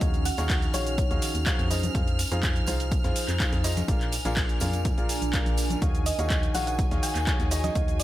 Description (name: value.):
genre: piano house.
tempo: 124 BPM.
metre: 4/4.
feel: straight.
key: Eb dorian.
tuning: A4 = 440 Hz.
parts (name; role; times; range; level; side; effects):
bright studio violin section; sustained chords; 0.0-8.0 s; Ab5 to F6; -37 LUFS; right 2 dB; sidechain pumping.
clear upright piano; riff; 0.0-8.0 s; Bb2 to F5; -33 LUFS; left 1 dB; sidechain pumping, digital delay.
organ-like FM bass; bass; 0.0-8.0 s; Bb1 to F2; -29 LUFS; equal; tube saturation, sidechain pumping.
dusty soul sampler-style drum kit; drums; 0.0-8.0 s; hi-hat, snare drum; -43 LUFS; equal; none.
electronic kick drum; drums; 0.0-7.9 s; none; -27 LUFS; equal; none.
punchy analog drum machine; drums; 0.0-8.0 s; handclaps, hi-hat, shaker; -32 LUFS; equal; none.
tambourine and congas; percussion; 0.0-8.0 s; none; -38 LUFS; left 1 dB; none.
warbly tape-like pad; texture; 0.0-8.0 s; Db4 to Ab5; -37 LUFS; right 3 dB; chorus, built-in reverb, sidechain pumping.
thumb-piano-like synth pluck; melody; 0.3-1.1, 6.1-8.0 s; Db5 to Ab5; -33 LUFS; right 1 dB; chorus, vintage 12-bit sampler grit, digital delay.
room: digital ambience.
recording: none.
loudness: -23 LUFS.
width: side -14 dB against mid.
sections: 0.0-8.0 A section.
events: none.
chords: 0.0 Ebm11; 1.7 Fm7; 3.9 Bb7; 5.8 Ebm11.